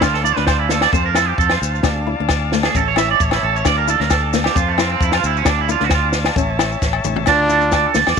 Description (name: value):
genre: highlife guitar band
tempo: 133 BPM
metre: 4/4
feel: straight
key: D minor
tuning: A4 = 440 Hz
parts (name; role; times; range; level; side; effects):
- flamenco guitar; accompaniment; 0.0-8.2 s; A3 to E4; -25 LUFS; left 13 dB; none
- tonewheel organ; sustained chords; 0.0-7.3 s; C5 to A5; -26 LUFS; left 1 dB; slow rotary speaker, overdrive
- electric guitar at the edge of break-up; arpeggios; 0.0-8.2 s; A3 to A5; -18 LUFS; right 12 dB; wide subtle chorus, tape echo
- fingered electric bass; bass; 0.0-8.2 s; A1 to F2; -22 LUFS; left 1 dB; none
- compact cocktail drum kit; drums; 0.0-8.2 s; crash cymbal, kick drum, snare drum, toms; -20 LUFS; equal; none
- agogo bells; percussion; 0.0-8.2 s; none; -24 LUFS; left 15 dB; none
- maracas; percussion; 0.0-8.2 s; none; -31 LUFS; left 17 dB; none
- warm trumpet; melody; 7.3-7.9 s; D4; -17 LUFS; right 2 dB; none
- breathy trumpet; second line; 7.3-7.9 s; F4; -26 LUFS; left 12 dB; none
room: light reverb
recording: 1960s-style stereo with parts hard left and right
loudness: -14 LUFS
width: side -6 dB against mid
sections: 0.0-7.3 A section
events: clean electric guitar solo 0.0-7.3; drum fill 6.8-7.3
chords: 0.0 Dm; 0.9 F; 1.8 Dm; 2.7 A; 3.7 Dm; 4.6 F; 5.5 Dm; 6.4 A; 7.3 Dm